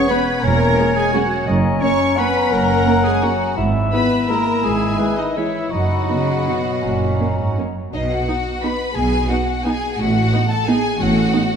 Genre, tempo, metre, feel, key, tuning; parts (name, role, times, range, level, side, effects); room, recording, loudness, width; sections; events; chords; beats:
classical, orchestral ballroom waltz; 153-191 BPM; 3/4; rubato; B major; A4 = 440 Hz
rich symphonic violin section; melody; 0.0-11.6 s; D#5 to C#6; -25 LUFS; left 4 dB
bright clarinet; second line; 0.0-7.7 s; B4 to F#5; -26 LUFS; equal
bright large flute ensemble; second line; 0.0-7.7 s; A#5 to G#6; -27 LUFS; left 1 dB
clear symphonic violin section; second line; 0.0-11.6 s; D#4 to C#5; -26 LUFS; left 3 dB
mellow cor anglais; second line; 0.0-7.5 s; D#4 to C#5; -26 LUFS; right 1 dB
clear bassoon; accompaniment; 0.0-7.7 s; B3 to E4; -25 LUFS; left 1 dB
mellow French horn section; sustained chords; 0.0-7.6 s; D#3 to C#4; -23 LUFS; left 3 dB
warm symphonic viola section; accompaniment; 0.1-11.4 s; G#3 to E4; -24 LUFS; right 3 dB
rich symphonic cello section; bass; 0.4-11.3 s; E2 to C#3; -23 LUFS; right 2 dB
rich symphonic double bass section; bass; 0.4-11.3 s; E1 to B1; -23 LUFS; right 2 dB
wet scoring stage reverb, RT60 1.9 s; dark, warm production; -16 LUFS; side -7 dB against mid
0.0-7.9 A section; 7.9-11.6 B section
0.4 C#m/E; 1.5 F#; 3.6 E/G#; 5.7 B/F#; 6.8 F#; 7.9 B; 10.0 B7/A
0.10 | 0.43 0.78 1.14 | 1.48 1.82 2.18 | 2.52 2.87 3.23 | 3.58 3.93 4.29 | 4.64 4.99 5.36 | 5.72 6.09 6.47 | 6.83 7.20 7.58 | 7.94 8.28 8.63 | 8.97 9.30 9.66 | 9.99 10.33 10.68 | 11.01 11.34